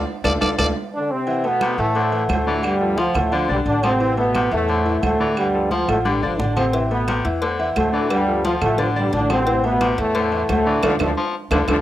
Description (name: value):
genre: latin, salsa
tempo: 176 BPM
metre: 4/4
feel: straight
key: A minor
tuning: A4 = 439 Hz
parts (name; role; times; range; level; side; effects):
- upright bass; bass; 0.0-11.8 s; G1 to A2; -25 LUFS; equal; none
- growling trumpet; melody; 0.2-0.7 s; D5; -24 LUFS; equal; cassette tape, plate reverb
- clear grand piano; accompaniment; 0.2-11.8 s; D3 to E5; -25 LUFS; left 4 dB; cassette tape
- claves; percussion; 0.2-11.8 s; none; -30 LUFS; right 6 dB; none
- congas; percussion; 0.2-11.8 s; none; -32 LUFS; equal; none
- cowbell; percussion; 0.2-0.7, 6.7-11.8 s; none; -30 LUFS; left 4 dB; none
- timbales and agogo bells; percussion; 0.2-11.8 s; none; -25 LUFS; right 4 dB; none
- bright trombone section; melody; 0.9-11.8 s; G2 to F4; -21 LUFS; equal; cassette tape
- raspy baritone saxophone; second line; 1.6-11.8 s; C3 to F3; -26 LUFS; left 3 dB; cassette tape
room: moderate studio reverb, RT60 0.6 s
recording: home recording on cassette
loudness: -17 LUFS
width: side -13 dB against mid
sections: 0.0-1.3 A section; 1.3-11.8 B section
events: band accent 0.0-1.3, 10.8-11.8; trumpet solo 0.0-1.3; drum fill 0.8-1.3, 5.7-6.7, 11.3-11.8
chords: 0.0 Dm; 1.3 Am; 2.6 Dm; 4.0 Am; 5.4 Dm; 6.7 Am; 8.1 Dm; 9.5 Am; 10.8 Dm